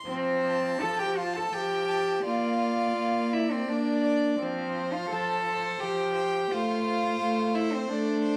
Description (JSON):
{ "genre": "classical, slow romantic movement for string quartet", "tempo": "84 BPM", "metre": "3/4", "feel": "rubato", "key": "F major", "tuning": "A4 = 440 Hz", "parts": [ { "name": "warm violin", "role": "melody", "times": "0.0-8.4 s", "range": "C5 to A5", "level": "-38 LUFS", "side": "equal", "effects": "none" }, { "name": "rich violin", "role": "second line", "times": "0.1-8.4 s", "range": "C5 to A5", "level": "-36 LUFS", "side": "equal", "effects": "none" }, { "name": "dark viola", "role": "accompaniment", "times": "0.1-8.4 s", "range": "F3 to Bb3", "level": "-34 LUFS", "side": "equal", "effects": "none" }, { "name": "rich cello", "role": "bass", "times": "0.1-8.4 s", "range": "C4 to A4", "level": "-31 LUFS", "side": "equal", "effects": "none" } ], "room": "moderate recital hall reverb, RT60 1.5 s", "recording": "none", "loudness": "-28 LUFS", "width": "mono", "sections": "0.1-8.4 A section", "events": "none", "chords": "0.1 F; 2.2 Bb; 4.4 F; 6.5 F/A", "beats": "| 0.06 0.81 1.52 | 2.24 2.96 3.69 | 4.40 5.09 5.80 | 6.51 7.21 7.90" }